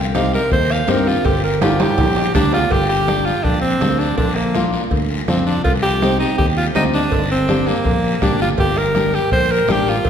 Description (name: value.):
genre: latin, cumbia.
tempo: 164 BPM.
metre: 4/4.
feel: straight.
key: G minor.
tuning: A4 = 441 Hz.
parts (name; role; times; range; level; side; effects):
fingered electric bass; bass; 0.0-10.1 s; G1 to G2; -21 LUFS; equal; none.
edgy alto saxophone; melody; 0.1-10.1 s; Bb3 to F5; -19 LUFS; equal; none.
flamenco guitar; accompaniment; 0.1-9.9 s; Bb3 to G4; -23 LUFS; left 3 dB; none.
bombo; percussion; 0.1-10.1 s; none; -24 LUFS; left 1 dB; none.
congas; percussion; 0.2-10.1 s; none; -26 LUFS; right 2 dB; none.
cowbell and timbales; percussion; 0.2-10.1 s; none; -26 LUFS; right 3 dB; none.
guiro; percussion; 0.2-10.1 s; none; -30 LUFS; left 3 dB; none.
room: wet concert hall reverb, RT60 2.3 s.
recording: recorded in a church or concert hall.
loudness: -14 LUFS.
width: side -8 dB against mid.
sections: 0.0-2.7 A section; 2.7-10.1 B section.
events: alto saxophone solo 0.0-2.7; drum fill 1.6-2.7.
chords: 0.0 Cm; 1.2 Gm; 4.2 Bb; 5.7 Cm; 7.1 Gm.